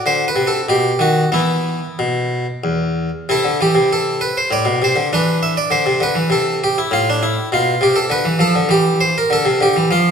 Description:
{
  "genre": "classical, baroque-style suite movement for harpsichord",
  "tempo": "90-102 BPM",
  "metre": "3/4",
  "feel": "rubato",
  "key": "E minor, A minor from 3.3 s",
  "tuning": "A4 = 440 Hz",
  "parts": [
    { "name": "harpsichord", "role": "solo", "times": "0.0-10.1 s", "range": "E2 to E5", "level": "-14 LUFS", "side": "equal", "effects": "none" }
  ],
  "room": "moderate recital hall reverb, RT60 1.7 s",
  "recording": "none",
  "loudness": "-14 LUFS",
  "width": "side -7 dB against mid",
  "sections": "0.0-3.3 A section; 3.3-10.1 A section",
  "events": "none",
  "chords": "0.0 F#dim; 0.7 B; 1.3 E5; 3.3 Am/C; 5.1 Cmaj9; 6.3 N.C.; 6.9 F/A; 8.7 C/E"
}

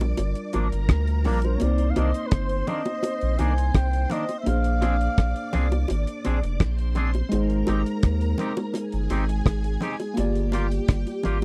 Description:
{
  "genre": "lovers rock reggae",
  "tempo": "84 BPM",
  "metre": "4/4",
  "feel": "straight",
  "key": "C minor",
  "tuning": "A4 = 440 Hz",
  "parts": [
    { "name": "string machine, full ensemble", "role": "second line", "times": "0.0-11.4 s", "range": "G4 to D6", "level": "-38 LUFS", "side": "equal", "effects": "ensemble chorus" },
    { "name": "tine electric piano", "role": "accompaniment", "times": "0.0-11.4 s", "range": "G3 to D5", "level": "-33 LUFS", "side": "equal", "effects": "slapback echo" },
    { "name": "round analog bass", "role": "bass", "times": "0.0-11.4 s", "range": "F1 to Eb2", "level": "-26 LUFS", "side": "equal", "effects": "none" },
    { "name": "damped 70s drum kit", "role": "drums", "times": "0.0-11.4 s", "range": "hi-hat, kick drum, rim click", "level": "-25 LUFS", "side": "equal", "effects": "none" },
    { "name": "bongos", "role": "percussion", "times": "0.0-11.4 s", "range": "none", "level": "-32 LUFS", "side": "equal", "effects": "none" },
    { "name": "twangy electric guitar", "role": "stabs", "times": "0.5-11.4 s", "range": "Eb3 to Ab4", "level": "-31 LUFS", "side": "equal", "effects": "lush chorus" },
    { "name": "breathy flugelhorn", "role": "melody", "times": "1.3-5.9 s", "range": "Bb4 to Ab5", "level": "-32 LUFS", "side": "equal", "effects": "tape echo" }
  ],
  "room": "little or no reverb",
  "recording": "dry, close 1970s-style studio recording",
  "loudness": "-24 LUFS",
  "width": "mono",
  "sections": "0.0-11.4 A section",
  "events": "none",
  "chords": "0.0 Gm7; 1.6 Cm9; 4.5 Bb9; 7.3 Abmaj7; 10.2 Gm7"
}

